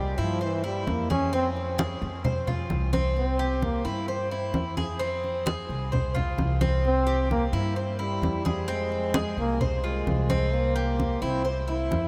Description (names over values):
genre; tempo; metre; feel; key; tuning
latin, Cuban son and guajira; 130 BPM; 4/4; straight; F harmonic minor; A4 = 440 Hz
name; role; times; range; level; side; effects
clear trombone; melody; 0.0-3.9, 6.9-12.1 s; E3 to E4; -32 LUFS; equal; none
Cuban tres; arpeggios; 0.0-12.1 s; C4 to C5; -33 LUFS; equal; slapback echo
upright bass; bass; 0.0-12.1 s; C2 to G2; -31 LUFS; equal; none
congas; percussion; 0.2-12.1 s; none; -33 LUFS; equal; none
room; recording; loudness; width
moderate huge ambient reverb, RT60 7.8 s; in a vast, echoing space; -27 LUFS; mono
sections
0.0-12.1 A section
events
trombone solo 0.0-12.1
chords
0.0 C; 1.3 Fm; 3.2 C; 5.0 Fm; 6.8 C; 8.7 Fm; 10.5 C7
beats
0.41 0.87 | 1.33 1.79 2.25 2.70 | 3.16 3.62 4.08 4.54 | 5.00 5.46 5.92 6.38 | 6.84 7.30 7.76 8.22 | 8.68 9.14 9.61 10.07 | 10.53 10.99 11.45 11.91